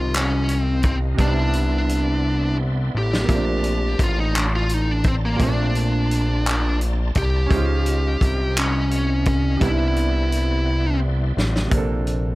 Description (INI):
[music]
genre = slow six-eight R&B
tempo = 57 BPM (dotted quarters)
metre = 6/8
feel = straight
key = Bb major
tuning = A4 = 439 Hz
[part]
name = high-gain lead guitar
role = melody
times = 0.0-11.0 s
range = Bb3 to G4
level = -24 LUFS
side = left 1 dB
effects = distortion
[part]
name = clear concert grand piano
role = accompaniment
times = 0.0-12.3 s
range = Bb2 to C5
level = -28 LUFS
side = right 3 dB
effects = none
[part]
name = bright tonewheel organ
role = sustained chords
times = 0.0-11.7 s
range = B3 to C6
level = -35 LUFS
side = equal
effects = chorus vibrato, fast rotary speaker
[part]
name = fat analog bass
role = bass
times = 0.0-12.3 s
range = A1 to Db2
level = -21 LUFS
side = equal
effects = none
[part]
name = warm soul drum kit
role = drums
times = 0.1-12.2 s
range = handclaps, hi-hat, kick drum, snare drum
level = -23 LUFS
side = equal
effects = none
[sound]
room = little or no reverb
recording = none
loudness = -18 LUFS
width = side -19 dB against mid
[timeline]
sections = 0.0-11.7 A section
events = drum fill 2.2-3.3, 10.7-11.7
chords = 0.0 Dbmaj9; 1.2 Cmaj9; 3.3 Bbmaj9; 7.5 Dbmaj9; 9.6 Cmaj9; 11.7 Bbmaj9